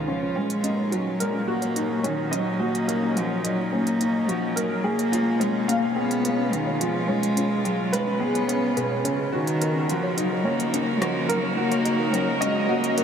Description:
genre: piano and strings electronica.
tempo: 107 BPM.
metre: 4/4.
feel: straight.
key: Eb minor.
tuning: A4 = 440 Hz.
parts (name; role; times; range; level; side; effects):
dark cello; melody; 0.0-13.0 s; Cb3 to Cb4; -24 LUFS; left 1 dB; none.
warm string quartet; sustained chords; 0.0-13.0 s; Bb2 to Bb4; -32 LUFS; equal; none.
dark upright piano; riff; 0.0-13.0 s; Db4 to F5; -27 LUFS; right 1 dB; analog chorus.
dark studio cello section; bass; 0.0-13.0 s; Db2 to Bb2; -38 LUFS; equal; none.
soft round pluck; arpeggios; 0.1-13.0 s; Db4 to Ab5; -35 LUFS; left 2 dB; none.
deep house drum kit; drums; 0.5-13.0 s; hi-hat, rim click; -32 LUFS; right 1 dB; none.
room: wet huge ambient reverb, RT60 7.6 s.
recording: dreamy mix soaked in reverb.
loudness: -22 LUFS.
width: side -8 dB against mid.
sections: 0.4-13.0 A section.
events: build-up 0.4-13.0.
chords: 0.4 Ebm7; 4.8 Db7; 9.3 Ebm7.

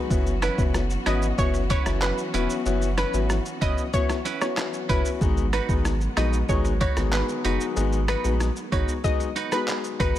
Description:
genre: dancehall.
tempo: 94 BPM.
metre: 4/4.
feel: straight.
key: G# minor.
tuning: A4 = 439 Hz.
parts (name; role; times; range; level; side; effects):
clear baby grand piano; accompaniment; 0.0-10.2 s; G#3 to F#4; -29 LUFS; left 7 dB; none.
warm studio string section; sustained chords; 0.0-10.2 s; D#3 to F#4; -35 LUFS; right 1 dB; sidechain pumping.
round analog bass; bass; 0.1-10.1 s; E1 to A#1; -26 LUFS; equal; none.
lo-fi sampler-style drum kit; drums; 0.1-10.2 s; handclaps, hi-hat, kick drum, rim click, shaker; -27 LUFS; equal; overdrive.
analog pluck; melody; 0.4-10.1 s; B4 to D#5; -30 LUFS; equal; chorus, digital delay.
clean electric guitar; arpeggios; 0.4-10.2 s; C#4 to B4; -33 LUFS; right 8 dB; none.
room: digital ambience.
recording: none.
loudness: -22 LUFS.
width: side -12 dB against mid.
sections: 0.0-10.2 A section.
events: none.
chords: 0.1 F#7sus4; 5.2 G#m7.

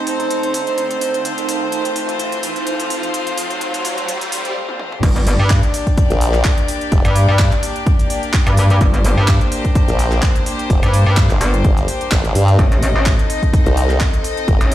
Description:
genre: bass house.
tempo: 127 BPM.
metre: 4/4.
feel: swing 55% on 16ths.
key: G minor.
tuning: A4 = 440 Hz.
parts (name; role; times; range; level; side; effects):
rich chamber string section; sustained chords; 0.0-14.7 s; A3 to Eb5; -22 LUFS; left 2 dB; sidechain pumping.
riser; sound effects; 0.0-4.6 s; none; -28 LUFS; right 1 dB; none.
warbly tape-like pad; texture; 0.0-4.6 s; Eb4 to C6; -23 LUFS; right 4 dB; chorus, built-in reverb, phaser, sidechain pumping.
garage drum kit; drums; 0.1-14.7 s; crash cymbal, handclaps, hi-hat, toms; -24 LUFS; right 1 dB; none.
metallic wobble bass; bass; 5.0-14.7 s; G1 to G2; -13 LUFS; equal; chorus, overdrive, sidechain pumping.
electronic kick drum; drums; 5.0-14.6 s; none; -15 LUFS; equal; overdrive.
formant-sweep wobble bass; bass; 6.1-7.0, 9.9-14.6 s; F1 to G2; -15 LUFS; equal; chorus, tube saturation, sidechain pumping.
room: digital ambience.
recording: played on a big sound system in a bare room, stone room reverb, high-pass filter.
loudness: -14 LUFS.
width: side -13 dB against mid.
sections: 0.0-5.0 A section; 5.0-14.7 B section.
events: build-up 0.0-5.0; riser 0.0-4.6; filter sweep 0.0-5.0; drum fill 4.7-5.0; drop 5.0-14.7.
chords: 0.0 Adim; 5.0 Gm; 12.6 Adim.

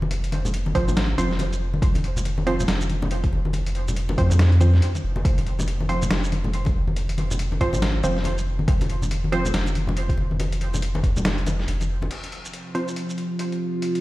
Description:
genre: deep dubstep.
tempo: 140 BPM.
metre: 4/4.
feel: swing 60% on 16ths, half-time.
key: F minor.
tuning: A4 = 441 Hz.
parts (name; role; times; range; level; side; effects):
soft dub sub bass; bass; 0.0-12.1 s; F1 to F2; -23 LUFS; equal; none.
congas; percussion; 0.0-12.1 s; none; -29 LUFS; left 2 dB; dub echo.
trip hop sampler-style drum kit; drums; 0.1-14.0 s; crash cymbal, hi-hat, shaker, snare drum; -29 LUFS; equal; none.
filtered dub chord stab; stabs; 0.8-9.5, 12.7-12.9 s; F3 to C5; -28 LUFS; right 2 dB; chorus, dub echo.
electronic kick drum; drums; 0.8-11.1 s; none; -22 LUFS; equal; overdrive.
overtone-sweeping drone; sustained chords; 12.6-14.0 s; C3 to F4; -26 LUFS; right 1 dB; chorus, built-in reverb.
room: light reverb.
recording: played on a big sound system in a bare room, stone room reverb.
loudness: -20 LUFS.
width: side -18 dB against mid.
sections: 0.0-12.1 A section; 12.1-14.0 B section.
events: none.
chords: 0.0 F5.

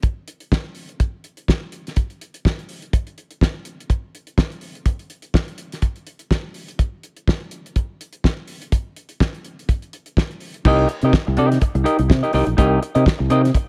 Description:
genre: disco.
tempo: 124 BPM.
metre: 4/4.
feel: swing 56% on 16ths.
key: C minor.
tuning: A4 = 440 Hz.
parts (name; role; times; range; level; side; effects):
damped 70s drum kit; drums; 0.0-13.7 s; crash cymbal, hi-hat, kick drum, snare drum; -20 LUFS; equal; none.
semi-hollow electric guitar; accompaniment; 10.7-13.6 s; Eb4 to Eb5; -22 LUFS; equal; none.
fingered electric bass; bass; 10.7-13.5 s; Bb1 to C3; -20 LUFS; equal; none.
room: studio ambience.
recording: none.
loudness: -21 LUFS.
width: mono.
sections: 0.0-10.7 A section; 10.7-13.7 B section.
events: none.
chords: 0.0 N.C.; 10.7 Cm7.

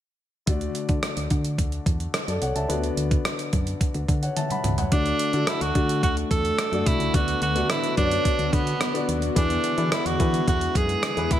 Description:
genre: 1980s-style pop.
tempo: 108 BPM.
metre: 4/4.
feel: straight.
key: D major.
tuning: A4 = 440 Hz.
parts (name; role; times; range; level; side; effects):
warm concert grand piano; accompaniment; 0.5-11.4 s; D3 to B5; -28 LUFS; left 4 dB; none.
solid FM bass; bass; 0.5-11.4 s; G1 to E3; -28 LUFS; equal; none.
clean 12-bit digital drum machine; drums; 0.5-11.4 s; hi-hat, kick drum, rim click, toms; -25 LUFS; equal; gated reverb.
edgy alto saxophone; melody; 4.9-11.4 s; B3 to A4; -25 LUFS; right 3 dB; none.
granular cloud pad; sustained chords; 6.2-11.4 s; D3 to F#4; -32 LUFS; equal; built-in reverb.
room: light reverb, digital ambience.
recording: none.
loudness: -21 LUFS.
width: side -11 dB against mid.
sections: 0.5-4.9 A section; 4.9-11.4 B section.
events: drum fill 4.4-4.9.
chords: 0.5 D; 2.7 Bm/D; 4.9 D; 7.1 Bm/D; 9.4 E7.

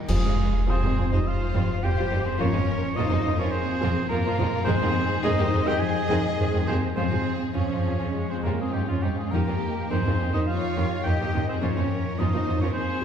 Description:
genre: cinematic, heroic adventure film score.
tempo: 105 BPM.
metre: 4/4.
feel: straight.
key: F minor.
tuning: A4 = 440 Hz.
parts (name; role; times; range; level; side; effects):
concert harp; arpeggios; 0.0-13.0 s; Eb3 to G5; -33 LUFS; left 8 dB; none.
warm symphonic violin section; melody; 0.1-13.0 s; Db4 to Eb5; -35 LUFS; left 3 dB; none.
mellow cor anglais; second line; 0.1-13.0 s; F4 to Ab5; -31 LUFS; equal; none.
rich symphonic violin section; second line; 0.1-12.7 s; Ab3 to Ab4; -35 LUFS; left 2 dB; none.
dark symphonic viola section; accompaniment; 0.1-12.7 s; Eb3 to Db4; -32 LUFS; right 1 dB; none.
dark symphonic double bass section; bass; 0.1-12.7 s; F2; -26 LUFS; right 1 dB; none.
warm symphonic cello section; bass; 0.1-13.0 s; F3 to Ab4; -31 LUFS; right 2 dB; none.
clash cymbals and concert bass drum; percussion; 0.1-1.2 s; none; -28 LUFS; equal; none.
room: wet scoring stage reverb, RT60 1.9 s.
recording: heard from further back in the room.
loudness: -22 LUFS.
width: side -8 dB against mid.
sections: 0.1-13.0 A section.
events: band accent 0.1-0.7.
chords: 0.1 Fmadd9; 2.4 Bbm/F; 4.7 Ab/F; 7.0 Db/F; 9.3 Eb/F; 11.6 Bbm/F.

